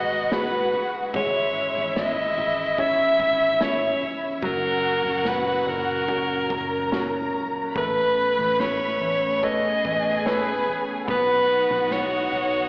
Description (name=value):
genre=pop ballad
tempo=73 BPM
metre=4/4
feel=straight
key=unclear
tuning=A4 = 440 Hz
part: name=breathy soprano saxophone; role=melody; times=0.0-12.7 s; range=A#4 to E5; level=-22 LUFS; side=equal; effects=slapback echo
part: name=warm symphonic violin section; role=second line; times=0.0-12.7 s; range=E4 to B5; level=-28 LUFS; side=equal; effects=slapback echo
part: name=bright upright piano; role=accompaniment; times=0.0-12.7 s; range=F#3 to C#5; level=-30 LUFS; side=equal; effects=slapback echo
part: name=airy breathy pad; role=sustained chords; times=0.0-12.7 s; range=A#2 to A#5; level=-34 LUFS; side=equal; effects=chorus
part: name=vintage muted fingered electric bass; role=bass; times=0.0-12.7 s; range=F#1 to B1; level=-37 LUFS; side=equal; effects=none
part: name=unplugged drum kit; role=drums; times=0.3-12.5 s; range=kick drum, snare drum, toms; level=-33 LUFS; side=equal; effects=slapback echo
room=moderate club reverb, RT60 0.6 s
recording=live gig heard through the venue's PA, recital hall reverb, AM radio sound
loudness=-20 LUFS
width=side -26 dB against mid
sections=0.0-12.7 A section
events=none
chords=0.0 G#m7; 1.1 C#madd9/G#; 4.4 F#; 7.8 Aadd9; 11.1 B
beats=0.32 | 1.14 1.96 2.78 3.60 | 4.43 5.26 6.09 6.92 | 7.76 8.60 9.43 10.26 | 11.08 11.90